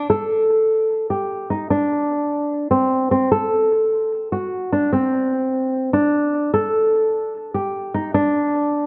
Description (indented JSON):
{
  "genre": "hip hop",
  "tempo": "149 BPM",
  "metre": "4/4",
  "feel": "half-time",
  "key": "unclear",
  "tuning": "A4 = 439 Hz",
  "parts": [
    { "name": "nylon-string guitar", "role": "solo", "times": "0.0-8.9 s", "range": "C4 to A4", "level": "-20 LUFS", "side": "equal", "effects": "low-pass filter, tape echo" }
  ],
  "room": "moderate recital hall reverb, RT60 1.4 s, small room ambience",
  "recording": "none",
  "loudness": "-20 LUFS",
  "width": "mono",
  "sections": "0.1-8.9 A section",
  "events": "none",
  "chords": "none",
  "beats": "| 0.09 0.50 0.90 1.30 | 1.71 2.11 2.51 2.91 | 3.31 3.72 4.12 4.52 | 4.93 5.33 5.73 6.13 | 6.54 6.94 7.34 7.75 | 8.15 8.55"
}